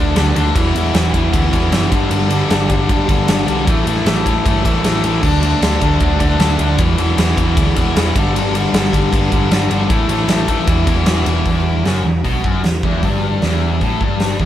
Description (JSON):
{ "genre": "hard rock", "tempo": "154 BPM", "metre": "4/4", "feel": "straight", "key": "E minor", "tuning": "A4 = 441 Hz", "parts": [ { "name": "sludgy distorted guitar", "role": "riff", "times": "0.0-14.5 s", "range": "E2 to D4", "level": "-20 LUFS", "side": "right 4 dB", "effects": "overdrive" }, { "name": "tight distorted guitar", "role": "riff", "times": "0.0-14.5 s", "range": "E2 to D4", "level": "-19 LUFS", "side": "left 6 dB", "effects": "distortion" }, { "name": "overdriven picked electric bass", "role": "bass", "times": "0.0-14.5 s", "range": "E1 to D2", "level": "-19 LUFS", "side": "equal", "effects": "none" }, { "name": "huge arena drum kit", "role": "drums", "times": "0.2-14.5 s", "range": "crash cymbal, hi-hat, kick drum, ride cymbal, snare drum", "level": "-17 LUFS", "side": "equal", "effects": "none" } ], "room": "moderate studio reverb, RT60 0.6 s", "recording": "band playing live in one room", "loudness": "-13 LUFS", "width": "side -12 dB against mid", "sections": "0.0-11.5 A section; 11.5-14.5 B section", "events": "none", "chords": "0.0 D5; 0.6 E5; 1.9 G5; 3.7 A5; 5.2 D5; 6.8 E5; 8.1 G5; 9.9 A5; 10.7 E5; 11.5 Em" }